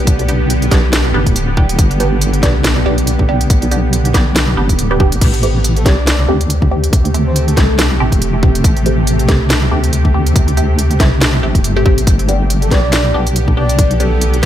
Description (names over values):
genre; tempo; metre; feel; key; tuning
deep dubstep; 140 BPM; 4/4; swing 57% on 16ths, half-time; A minor; A4 = 437 Hz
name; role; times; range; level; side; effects
bowed-like drone; sustained chords; 0.0-14.5 s; C3 to G4; -20 LUFS; equal; built-in reverb
filtered dub chord stab; stabs; 0.0-14.5 s; A3 to G4; -21 LUFS; right 1 dB; phaser, dub echo
deep soft wobble bass; bass; 0.0-14.5 s; D1 to D2; -14 LUFS; equal; chorus
electronic kick drum; drums; 0.1-14.5 s; none; -13 LUFS; equal; none
garage drum kit; drums; 0.1-14.5 s; crash cymbal, handclaps, hi-hat, snare drum; -18 LUFS; equal; none
breathy flute-like synth lead; melody; 5.8-7.8, 12.6-14.3 s; A4 to D5; -22 LUFS; equal; lush chorus, dub echo
room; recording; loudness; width
digital ambience; none; -10 LUFS; side -11 dB against mid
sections
0.0-14.5 A section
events
none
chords
0.0 G; 5.2 Am7; 12.1 G